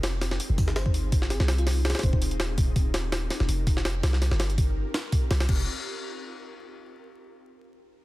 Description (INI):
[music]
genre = drum and bass, jungle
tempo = 165 BPM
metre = 4/4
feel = swing 53% on 16ths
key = F minor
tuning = A4 = 439 Hz
[part]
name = warm 808-style bass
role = bass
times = 0.0-5.7 s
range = Eb1 to C2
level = -26 LUFS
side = equal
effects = none
[part]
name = jungle sampler-style drum kit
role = drums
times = 0.0-5.6 s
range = crash cymbal, hi-hat, kick drum, snare drum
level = -26 LUFS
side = equal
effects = studio reverb
[part]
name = bell-like FM electric piano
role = melody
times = 0.8-2.2 s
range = F4 to C5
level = -38 LUFS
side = left 1 dB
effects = chorus, tremolo, cassette tape, dub echo
[sound]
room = little or no reverb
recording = dense, heavily limited modern master, vinyl crackle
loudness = -23 LUFS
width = side -18 dB against mid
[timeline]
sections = 0.0-5.5 A section; 5.5-6.9 B section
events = drop 0.0-5.5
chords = 0.0 Fm7; 2.6 Eb7; 4.0 C7sus4; 5.5 Fm7